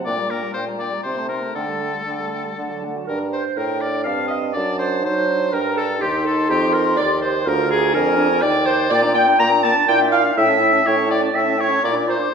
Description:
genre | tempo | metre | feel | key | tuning
quick classical-period movement for wind quintet | 123 BPM | 3/4 | straight | G minor | A4 = 440 Hz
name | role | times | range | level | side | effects
concert flute | melody | 0.0-12.3 s | E5 to D6 | -26 LUFS | left 5 dB | none
mellow French horn | accompaniment | 0.0-12.3 s | F#3 to G4 | -27 LUFS | right 1 dB | none
mellow clarinet | accompaniment | 0.0-12.2 s | A3 to Bb5 | -20 LUFS | right 3 dB | none
clear oboe | second line | 0.1-12.3 s | G4 to Bb5 | -24 LUFS | left 4 dB | none
mellow bassoon | bass | 0.1-12.3 s | D2 to F#3 | -22 LUFS | right 1 dB | none
room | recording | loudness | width
wet recital hall reverb, RT60 1.4 s | recorded in a church or concert hall | -16 LUFS | side -6 dB against mid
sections
0.0-3.1 A section; 3.1-12.3 A section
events
none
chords
0.1 Gm/Bb; 1.0 Adim/C; 1.6 Dsus4; 2.6 D; 3.1 Gm; 4.5 D7/F#; 5.5 Gm; 6.0 Eb; 7.5 Bb7/D; 8.4 Ebmaj7; 8.9 Gm/Bb; 9.9 Em7b5/Bb; 10.4 A7; 11.8 Bb

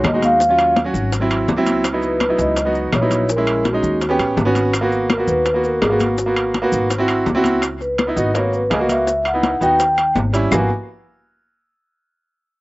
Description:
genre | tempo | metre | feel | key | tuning
Afro-Cuban jazz | 166 BPM | 4/4 | straight | G# minor | A4 = 440 Hz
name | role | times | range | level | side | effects
vibraphone with soft mallets | melody | 0.0-10.7 s | F#4 to G#5 | -18 LUFS | equal | none
bright baby grand piano | accompaniment | 0.0-10.7 s | F#3 to G#4 | -19 LUFS | right 1 dB | slapback echo
upright bass | bass | 0.0-10.7 s | G#1 to D#2 | -24 LUFS | left 1 dB | none
bongos | percussion | 0.0-10.6 s | none | -27 LUFS | left 4 dB | slapback echo
claves | percussion | 0.0-10.6 s | none | -28 LUFS | left 3 dB | none
congas | percussion | 0.0-10.6 s | none | -24 LUFS | left 2 dB | none
timbales | percussion | 0.0-10.6 s | none | -27 LUFS | right 2 dB | slapback echo
maracas | percussion | 0.1-10.6 s | none | -34 LUFS | left 3 dB | none
room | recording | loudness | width
little or no reverb | recorded outdoors, with no room sound, nothing above 7.7 kHz | -15 LUFS | side -20 dB against mid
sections
0.0-7.6 A section; 7.6-10.5 B section; 10.5-12.0 C section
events
none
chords
0.4 D#m9; 1.1 G#aug7; 1.8 C#m11; 3.3 A#m7b5; 4.0 D#7alt; 4.7 G#m7; 6.9 G#7b13; 7.6 C#7sus2; 8.3 G#m9; 9.1 C#m9; 9.8 D#7b9; 10.5 G#m9

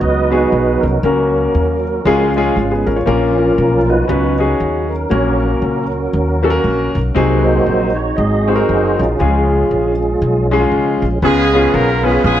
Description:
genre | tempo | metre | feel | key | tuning
gospel | 118 BPM | 4/4 | swing 60% on 8ths | unclear | A4 = 440 Hz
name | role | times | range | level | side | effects
tonewheel organ | sustained chords | 0.0-12.4 s | E#3 to B5 | -18 LUFS | right 2 dB | slow rotary speaker, chorus vibrato
warm French horn section | sustained chords | 0.0-11.2 s | E#3 to F#4 | -26 LUFS | right 1 dB | none
upright bass | bass | 0.0-12.4 s | F#1 to D#2 | -18 LUFS | equal | none
clear grand piano | accompaniment | 0.3-12.4 s | A#2 to C#5 | -16 LUFS | left 2 dB | none
warm horn section | melody | 11.2-12.4 s | G#3 to A#4 | -14 LUFS | right 2 dB | none
room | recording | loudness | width
moderate echo chamber reverb, RT60 1.8 s | worn, warbling old tape, cassette tape, warbly pitch drift | -12 LUFS | side -11 dB against mid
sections
0.0-11.2 A section; 11.2-12.4 B section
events
tonewheel organ solo 0.0-11.2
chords
0.0 B; 1.0 F#/C#; 2.0 C#; 3.1 A#m; 4.1 C#9sus4; 5.1 F#/A#; 7.2 G#7; 9.2 C#; 11.2 C#7

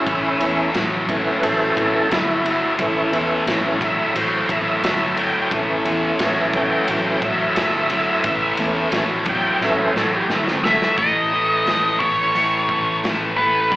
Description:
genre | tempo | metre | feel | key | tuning
blues rock power trio and southern rock | 88 BPM | 4/4 | straight | A mixolydian | A4 = 440 Hz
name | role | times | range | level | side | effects
overdriven tonewheel organ | sustained chords | 0.0-11.0 s | E3 to G5 | -21 LUFS | right 1 dB | slow rotary speaker, chorus vibrato
fuzz guitar | riff | 0.0-13.8 s | G2 to A3 | -20 LUFS | equal | distortion, slapback echo
picked electric bass | bass | 0.1-13.8 s | G1 to E2 | -32 LUFS | equal | none
big rock drum kit | drums | 0.1-13.8 s | hi-hat, kick drum, ride cymbal, snare drum | -26 LUFS | equal | none
octave-fuzz lead guitar | melody | 10.6-13.8 s | B4 to E5 | -18 LUFS | equal | wah, distortion
room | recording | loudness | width
moderate club reverb, RT60 0.8 s | live gig heard through the venue's PA, club reverb, AM radio sound | -16 LUFS | side -17 dB against mid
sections
0.0-11.0 A section; 11.0-13.8 B section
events
tonewheel organ solo 0.0-11.0; drum fill 9.6-11.0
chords
0.0 A

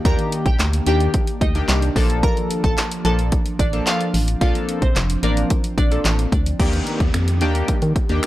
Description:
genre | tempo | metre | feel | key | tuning
dance-pop | 110 BPM | 4/4 | straight | Bb major | A4 = 440 Hz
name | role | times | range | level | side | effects
airy breathy pad | sustained chords | 0.0-8.3 s | Eb3 to G4 | -29 LUFS | equal | chorus, sidechain pumping
glassy wavetable pluck | melody | 0.1-5.9 s | C4 to Bb5 | -26 LUFS | equal | chorus, sidechain pumping, tape echo
chorused retro synth keys | accompaniment | 0.1-8.3 s | Eb3 to Bb4 | -24 LUFS | left 1 dB | sidechain pumping
organ-like FM bass | bass | 0.1-8.2 s | F1 to Eb3 | -20 LUFS | equal | sidechain pumping
deep house drum kit | drums | 0.1-8.3 s | crash cymbal, finger snaps, handclaps, hi-hat, kick drum, snare drum | -20 LUFS | equal | none
downlifter | sound effects | 6.6-8.3 s | none | -33 LUFS | equal | none
room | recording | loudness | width
little or no reverb | dry, gritty hardware recording, transformer saturation | -17 LUFS | side -15 dB against mid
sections
0.0-6.6 A section; 6.6-8.3 B section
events
none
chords
0.0 Ebmaj7; 2.0 Bbmaj7; 6.6 Ebmaj7

